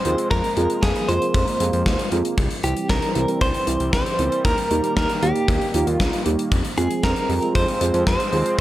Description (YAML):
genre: synth-pop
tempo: 116 BPM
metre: 4/4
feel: straight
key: F minor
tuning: A4 = 440 Hz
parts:
  - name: direct-recorded clean electric guitar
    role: melody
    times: 0.0-8.6 s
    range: G4 to C5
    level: -24 LUFS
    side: equal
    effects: tremolo, analog delay
  - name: sweeping resonant pad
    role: sustained chords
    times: 0.0-8.6 s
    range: Eb3 to C4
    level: -29 LUFS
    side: equal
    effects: chorus
  - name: muted felt-like synth keys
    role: accompaniment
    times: 0.1-8.5 s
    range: Bb3 to Bb4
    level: -25 LUFS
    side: right 3 dB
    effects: chorus
  - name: fat analog bass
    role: bass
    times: 0.1-8.6 s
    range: C2 to F2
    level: -24 LUFS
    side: equal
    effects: none
  - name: gated 80s drum kit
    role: drums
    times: 0.1-8.6 s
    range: hi-hat, kick drum, snare drum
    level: -23 LUFS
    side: equal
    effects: none
room: little or no reverb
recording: none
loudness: -18 LUFS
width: side -14 dB against mid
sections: 0.0-8.6 A section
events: none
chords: 0.0 Fm; 2.4 C; 4.4 Eb; 6.5 Fm